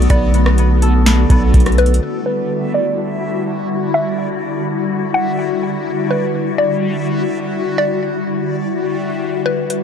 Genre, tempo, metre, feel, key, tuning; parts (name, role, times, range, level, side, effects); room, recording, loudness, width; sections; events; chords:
hip hop, atmospheric cloud-rap; 125 BPM; 4/4; half-time; E minor; A4 = 439 Hz
glassy FM pad; sustained chords; 0.0-9.8 s; D3 to F#4; -19 LUFS; left 2 dB; ensemble chorus, built-in reverb, sidechain pumping, low-pass filter
concert harp; arpeggios; 0.0-4.4 s; A3 to A4; -25 LUFS; left 1 dB; ping-pong delay
long sustained 808-style bass; bass; 0.0-2.0 s; B1; -12 LUFS; equal
booming analog drum machine; drums; 0.0-2.0, 9.7-9.8 s; hi-hat, kick drum, rim click, snare drum; -15 LUFS; equal; overdrive
backwards swelling texture; texture; 0.0-9.8 s; G3 to E5; -27 LUFS; equal; built-in reverb
mallet-like synth pluck; melody; 0.1-9.7 s; B4 to F#5; -20 LUFS; equal; chorus, phaser, low-pass filter, ping-pong delay
little or no reverb; dark, warm production; -14 LUFS; side -7 dB against mid
0.0-2.0 A section; 2.0-9.7 B section
filter sweep 2.0-9.7
0.0 Bm7; 2.0 Em9